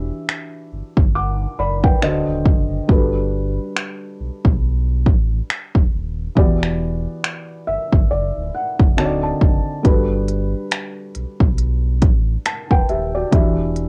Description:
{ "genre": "contemporary R&B", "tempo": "69 BPM", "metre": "4/4", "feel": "swing 58% on 16ths", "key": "G major", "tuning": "A4 = 440 Hz", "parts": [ { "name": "felt-muted upright piano", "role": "accompaniment", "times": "0.0-13.9 s", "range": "D3 to D6", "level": "-24 LUFS", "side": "equal", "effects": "cassette tape" }, { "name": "sub bass with octave", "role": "bass", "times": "0.0-13.9 s", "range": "D1 to B1", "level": "-24 LUFS", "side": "equal", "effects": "none" }, { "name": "industrial drum kit", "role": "drums", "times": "0.3-13.9 s", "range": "finger snaps, hi-hat, kick drum", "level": "-18 LUFS", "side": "equal", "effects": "cassette tape" } ], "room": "little or no reverb", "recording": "home recording on cassette", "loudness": "-18 LUFS", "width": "mono", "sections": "0.0-13.9 A section", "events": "break 0.0-9.8; felt piano fill 7.2-9.8", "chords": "0.0 Em9; 2.0 D7b9; 2.9 Gmaj9; 6.4 Em9; 9.0 D7b9; 9.8 Gmaj9; 13.3 Em9" }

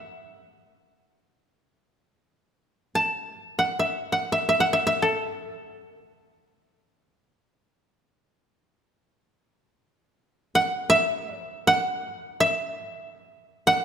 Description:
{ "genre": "japanese traditional, Japanese chamber music", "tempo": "free time", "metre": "none", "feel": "none", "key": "unclear", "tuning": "A4 = 441 Hz", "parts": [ { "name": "koto", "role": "solo", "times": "0.0-13.8 s", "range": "A4 to A5", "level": "-22 LUFS", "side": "equal", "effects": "none" } ], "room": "moderate concert hall reverb, RT60 2.1 s", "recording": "minimal, uncompressed stereo recording", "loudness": "-22 LUFS", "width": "side -8 dB against mid", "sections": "0.0-9.7 A section; 9.7-13.8 A section", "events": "none", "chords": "none" }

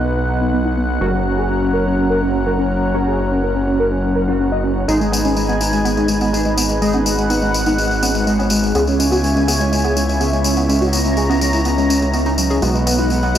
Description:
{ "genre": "melodic techno", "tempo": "124 BPM", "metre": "4/4", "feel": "straight", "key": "G# minor", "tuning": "A4 = 440 Hz", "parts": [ { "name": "wide unison lead", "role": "melody", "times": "0.0-13.4 s", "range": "G#3 to D#5", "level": "-20 LUFS", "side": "equal", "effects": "ensemble chorus, analog delay" }, { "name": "lush unison pad", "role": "sustained chords", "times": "0.0-13.4 s", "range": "C#4 to A#5", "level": "-22 LUFS", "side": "equal", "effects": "chorus" }, { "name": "sync-sweep polysynth", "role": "stabs", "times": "0.0-13.4 s", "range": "B2 to G#4", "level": "-23 LUFS", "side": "right 2 dB", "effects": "lush chorus, tape echo" }, { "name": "gritty driven synth bass", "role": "bass", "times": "0.0-13.4 s", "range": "F#1 to C#2", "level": "-20 LUFS", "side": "equal", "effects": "tube saturation" }, { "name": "woody wave-folded pluck", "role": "arpeggios", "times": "4.9-13.4 s", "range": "F#3 to G#4", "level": "-23 LUFS", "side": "right 1 dB", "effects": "chorus, tape echo" }, { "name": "tambourine", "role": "percussion", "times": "4.9-13.4 s", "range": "none", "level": "-23 LUFS", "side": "left 2 dB", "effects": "none" } ], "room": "moderate lush hall reverb, RT60 2.4 s", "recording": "faint mains hum", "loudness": "-14 LUFS", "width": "side -10 dB against mid", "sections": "0.0-13.4 A section", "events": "none", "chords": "0.0 B; 1.0 F#; 4.9 G#m; 8.8 C#m; 12.6 B" }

